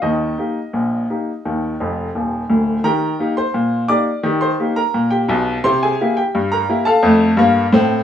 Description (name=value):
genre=ragtime piano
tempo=86 BPM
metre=2/4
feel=straight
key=Eb major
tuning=A4 = 440 Hz
part: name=bright upright piano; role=solo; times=0.0-8.0 s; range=D1 to D6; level=-15 LUFS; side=left 1 dB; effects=none
room=moderate studio reverb, RT60 0.7 s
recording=small room ambience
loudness=-15 LUFS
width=side -9 dB against mid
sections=0.0-2.9 A section; 2.9-8.0 B section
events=upright piano fill 1.8-2.9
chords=0.0 Eb; 5.6 C7; 7.0 F